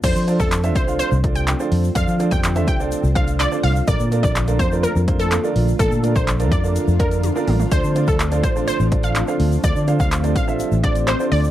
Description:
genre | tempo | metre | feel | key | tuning
dance-pop | 125 BPM | 4/4 | straight | F major | A4 = 441 Hz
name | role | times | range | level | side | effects
wide unison pluck | melody | 0.0-11.4 s | A4 to G5 | -24 LUFS | equal | sidechain pumping, slapback echo
warm baby grand piano | accompaniment | 0.0-11.5 s | D4 to F5 | -25 LUFS | right 5 dB | sidechain pumping
shimmering ambient pad | sustained chords | 0.9-11.5 s | D3 to G4 | -28 LUFS | left 2 dB | chorus, built-in reverb, sidechain pumping
vintage muted fingered electric bass | bass | 0.0-11.5 s | A1 to F3 | -19 LUFS | equal | sidechain pumping
deep house drum kit | drums | 0.0-11.4 s | crash cymbal, handclaps, hi-hat, kick drum, toms | -21 LUFS | equal | overdrive
egg shaker | percussion | 0.0-11.5 s | none | -39 LUFS | left 14 dB | none
room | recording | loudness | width
little or no reverb | dry, close 1970s-style studio recording | -16 LUFS | side -13 dB against mid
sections
0.0-11.5 A section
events
drop 0.0-11.5; drum fill 7.2-7.7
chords
0.0 F6; 3.9 Bbmaj7; 7.7 Dm7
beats
| 0.04 0.52 1.00 1.48 | 1.96 2.44 2.92 3.40 | 3.88 4.36 4.84 5.32 | 5.80 6.28 6.76 7.24 | 7.72 8.20 8.68 9.16 | 9.64 10.12 10.60 11.08

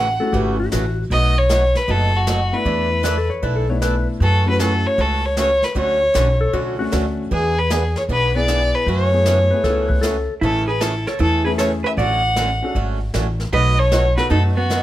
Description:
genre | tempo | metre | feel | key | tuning
country, western swing | 154 BPM | 4/4 | swing 66% on 8ths | unclear | A4 = 439 Hz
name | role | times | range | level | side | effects
rich fiddle | melody | 0.0-14.8 s | F#4 to F#5 | -19 LUFS | equal | none
picked swing-style acoustic guitar | accompaniment | 0.0-14.8 s | B2 to A4 | -26 LUFS | right 4 dB | none
upright bass | bass | 0.0-14.8 s | F#1 to F#2 | -20 LUFS | equal | none
clean lap steel guitar | second line | 0.2-4.1, 6.4-6.9, 9.5-10.3 s | F#4 to C#5 | -24 LUFS | left 4 dB | none
clear upright piano | accompaniment | 0.2-14.3 s | A3 to A4 | -25 LUFS | left 3 dB | none
jazz brush drum kit | drums | 0.3-14.8 s | brushed snare drum, hi-hat, kick drum, snare drum | -26 LUFS | equal | none
vintage hollow-body jazz guitar | second line | 10.4-14.8 s | B3 to D5 | -23 LUFS | right 2 dB | none
room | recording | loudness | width
light reverb | none | -16 LUFS | side -14 dB against mid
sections
0.0-14.8 A section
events
none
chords
0.0 F#m7; 1.1 B7; 2.7 E7sus4; 4.2 F#m7; 5.8 Dmaj7; 7.3 E7; 8.9 F#m11; 10.4 Amaj7; 12.0 Dmaj7/A; 13.5 B7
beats
0.33 0.72 | 1.11 1.50 1.88 2.27 | 2.66 3.05 3.43 3.82 | 4.21 4.60 4.99 5.37 | 5.76 6.15 6.54 6.93 | 7.31 7.70 8.09 8.48 | 8.87 9.26 9.64 10.03 | 10.42 10.81 11.20 11.59 | 11.98 12.36 12.75 13.14 | 13.53 13.92 14.31 14.70

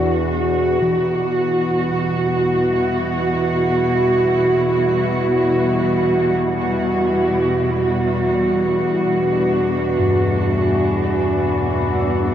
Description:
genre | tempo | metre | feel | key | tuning
dark ambient drone | free time | none | none | E minor | A4 = 440 Hz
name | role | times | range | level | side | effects
muted studio cello section | sustained chords | 0.0-12.3 s | E2 to F#4 | -17 LUFS | right 1 dB | none
quartz singing bowl | arpeggios | 0.0-12.3 s | G2 to E4 | -25 LUFS | left 1 dB | ping-pong delay
overtone-sweeping drone | drone | 0.0-12.3 s | E2 to E3 | -26 LUFS | left 1 dB | chorus, built-in reverb, phaser
backwards swelling texture | texture | 0.9 s | none | barely audible | none | none
room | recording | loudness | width
wet cathedral reverb, RT60 5.5 s | worn, warbling old tape, cassette tape, warbly pitch drift | -16 LUFS | side -10 dB against mid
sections
0.8-12.3 A section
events
fade-in on synth drone 0.8-12.3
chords
0.0 Bm/E; 0.8 Emadd9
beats
free time

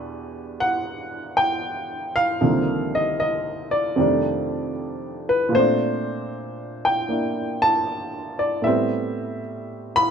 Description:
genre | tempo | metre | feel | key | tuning
solo jazz | 77 BPM | 4/4 | swing 68% on 8ths | unclear | A4 = 440 Hz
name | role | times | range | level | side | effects
warm upright piano | solo | 0.0-10.1 s | C2 to B5 | -21 LUFS | equal | none
room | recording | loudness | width
light reverb | close, detailed microphones | -20 LUFS | side -7 dB against mid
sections
0.0-10.1 A section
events
none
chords
0.0 Em7; 2.4 Cm11; 4.0 F13; 5.5 Bbmaj9; 8.7 Am9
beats
0.06 0.84 1.63 | 2.41 3.19 3.97 4.75 | 5.53 6.31 7.09 7.88 | 8.65 9.44

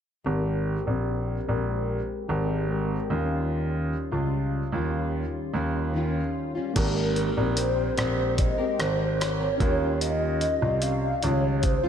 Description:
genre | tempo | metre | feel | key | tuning
indie pop, bedroom pop | 74 BPM | 4/4 | straight | Ab major | A4 = 440 Hz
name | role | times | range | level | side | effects
fingerpicked plugged-in steel-string acoustic guitar | accompaniment | 0.2-11.9 s | Eb3 to Bb4 | -30 LUFS | left 3 dB | analog chorus, warbly pitch drift, low-pass filter, slapback echo
warm concert grand piano | bass | 0.3-11.7 s | Ab1 to Eb2 | -27 LUFS | right 1 dB | none
bright reed electric piano | accompaniment | 6.7-11.9 s | Bb3 to Bb4 | -34 LUFS | right 6 dB | fast tremolo, cassette tape, slapback echo
warbly nostalgic lead | melody | 6.8-11.9 s | Bb4 to F5 | -27 LUFS | left 1 dB | ensemble chorus, slapback echo
dusty soul sampler-style drum kit | drums | 6.8-11.8 s | crash cymbal, hi-hat, kick drum, rim click | -28 LUFS | equal | none
room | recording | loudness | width
moderate concert hall reverb, RT60 2.1 s | big arena sound | -24 LUFS | side -8 dB against mid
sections
0.3-6.8 A section; 6.8-11.9 B section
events
filter sweep on steel-string acoustic guitar 0.3-6.8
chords
0.3 Abmaj9; 3.1 Eb9; 6.8 Abmaj9; 9.6 Eb9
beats
| 0.26 1.07 1.88 2.70 | 3.51 4.32 5.14 5.95 | 6.76 7.57 8.39 9.20 | 10.01 10.82 11.63

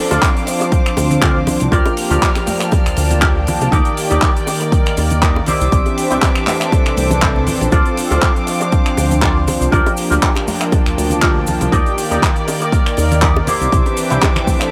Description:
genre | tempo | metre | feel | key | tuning
nu-disco, nu disco | 120 BPM | 4/4 | swing 54% on 16ths | D minor | A4 = 440 Hz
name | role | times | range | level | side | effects
warm analog pad | accompaniment | 0.0-14.7 s | Eb3 to A5 | -22 LUFS | equal | lush chorus, sidechain pumping, dub echo
clear studio string section | sustained chords | 0.0-14.7 s | Bb3 to F6 | -28 LUFS | equal | sidechain pumping
electric guitar with an envelope filter | riff | 0.1-14.6 s | Eb4 to D5 | -23 LUFS | equal | analog chorus, dub echo
chorused synth bass | bass | 0.1-14.2 s | Bb1 to Eb2 | -20 LUFS | equal | tube saturation
damped 70s drum kit | drums | 0.1-14.7 s | cabasa, finger snaps, handclaps, hi-hat | -23 LUFS | equal | none
bongos and congas | percussion | 0.1-14.6 s | none | -26 LUFS | equal | none
electronic kick drum | drums | 0.2-14.6 s | none | -18 LUFS | equal | overdrive
room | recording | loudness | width
light reverb, small room ambience | none | -15 LUFS | mono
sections
0.0-14.7 A section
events
none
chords
0.0 Dm7; 1.7 Gm7/D; 3.7 Ebmaj7; 5.5 Cadd9; 7.7 Dm7; 9.7 Gm7/D; 11.7 Ebmaj7; 13.5 Cadd9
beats
0.23 0.72 1.23 | 1.73 2.23 2.73 3.23 | 3.73 4.22 4.72 5.22 | 5.72 6.22 6.72 7.22 | 7.72 8.22 8.72 9.22 | 9.72 10.22 10.72 11.22 | 11.72 12.22 12.72 13.22 | 13.72 14.22

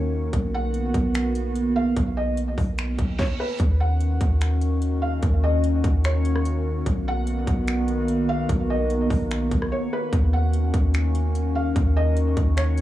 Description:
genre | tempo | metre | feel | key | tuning
hip hop, atmospheric cloud-rap | 147 BPM | 4/4 | half-time | Eb minor | A4 = 437 Hz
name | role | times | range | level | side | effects
felt-muted upright piano | melody | 0.0-12.8 s | B4 to F#5 | -31 LUFS | equal | low-pass filter, digital delay
warbly tape-like pad | sustained chords | 0.0-12.8 s | Eb3 to Gb4 | -26 LUFS | equal | chorus, built-in reverb, sidechain pumping
soft 808-style bass | bass | 0.0-12.8 s | B1 to Eb2 | -23 LUFS | equal | none
trap drum kit | drums | 0.3-12.8 s | finger snaps, hi-hat, kick drum, rim click, snare drum | -25 LUFS | equal | none
reverse cymbal | sound effects | 2.9-3.6 s | none | -40 LUFS | right 6 dB | none
room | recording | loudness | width
digital ambience | worn, warbling old tape, cassette tape, warbly pitch drift, small room ambience | -20 LUFS | side -14 dB against mid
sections
0.0-3.6 A section; 3.6-12.8 B section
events
reverse cymbal 2.9-3.6; break 9.7-10.1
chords
0.3 Bmaj7; 3.6 Ebm7; 6.9 Bmaj7; 10.1 Ebm7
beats
| 0.33 0.74 1.15 1.55 | 1.96 2.37 2.78 3.19 | 3.60 4.00 4.41 4.82 | 5.23 5.64 6.04 6.45 | 6.86 7.27 7.68 8.09 | 8.49 8.90 9.31 9.72 | 10.13 10.53 10.94 11.35 | 11.76 12.17 12.57

